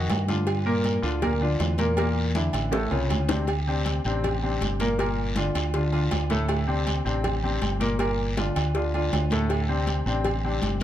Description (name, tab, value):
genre	latin, salsa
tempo	160 BPM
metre	4/4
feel	straight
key	D minor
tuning	A4 = 440 Hz
part	clear grand piano	accompaniment	0.0-10.8 s	A2 to Bb4	-27 LUFS	left 1 dB	none
part	fingered electric bass	bass	0.0-10.8 s	G1 to G2	-26 LUFS	equal	none
part	congas	percussion	0.1-10.8 s	none	-34 LUFS	left 1 dB	none
part	cowbell and bongos	percussion	0.1-10.8 s	none	-32 LUFS	left 2 dB	none
part	guiro	percussion	0.1-10.8 s	none	-38 LUFS	left 3 dB	none
part	timbales and agogo bells	percussion	0.1-10.8 s	none	-34 LUFS	right 6 dB	none
room	light reverb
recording	close, detailed microphones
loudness	-23 LUFS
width	side -11 dB against mid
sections	0.0-3.5 A section; 3.5-10.8 B section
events	drum fill 2.7-3.5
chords	0.5 Gm7; 2.0 Bbmaj7#11; 2.7 Aaug; 3.5 D5; 5.0 Gm7; 6.5 D5; 8.0 Gm7; 9.5 D5